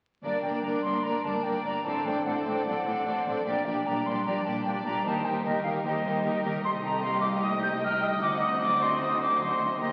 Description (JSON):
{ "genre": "classical", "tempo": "151 BPM", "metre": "4/4", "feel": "straight", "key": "G minor", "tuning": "A4 = 440 Hz", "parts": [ { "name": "silver concert flute", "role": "second line", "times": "0.2-9.9 s", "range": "D5 to G6", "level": "-31 LUFS", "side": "equal", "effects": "none" }, { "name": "warm symphonic violin section", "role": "second line", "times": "0.2-9.9 s", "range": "F#4 to Eb5", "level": "-35 LUFS", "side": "equal", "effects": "none" }, { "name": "rich symphonic viola section", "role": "accompaniment", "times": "0.2-9.9 s", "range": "A3 to Eb4", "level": "-36 LUFS", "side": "equal", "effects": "none" }, { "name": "concert harp", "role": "arpeggios", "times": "0.2-9.9 s", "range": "G2 to D5", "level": "-39 LUFS", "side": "equal", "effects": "none" }, { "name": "rich symphonic cello section", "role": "bass", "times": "0.2-9.9 s", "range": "C2 to Bb2", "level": "-41 LUFS", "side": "equal", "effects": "none" }, { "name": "rich symphonic double bass section", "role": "bass", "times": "0.2-9.9 s", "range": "G1 to Eb2", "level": "-43 LUFS", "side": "equal", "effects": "none" }, { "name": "warm symphonic violin section", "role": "melody", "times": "1.1-9.9 s", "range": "A4 to G5", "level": "-42 LUFS", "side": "equal", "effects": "none" } ], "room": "wet scoring stage reverb, RT60 1.6 s", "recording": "very old 78 rpm record, vinyl crackle", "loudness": "-28 LUFS", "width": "mono", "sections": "0.2-9.9 A section", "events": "none", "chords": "0.2 Gm; 1.9 D7/A; 3.5 Gm/Bb; 5.1 Eb; 6.6 Am7b5/C; 8.2 D7b9" }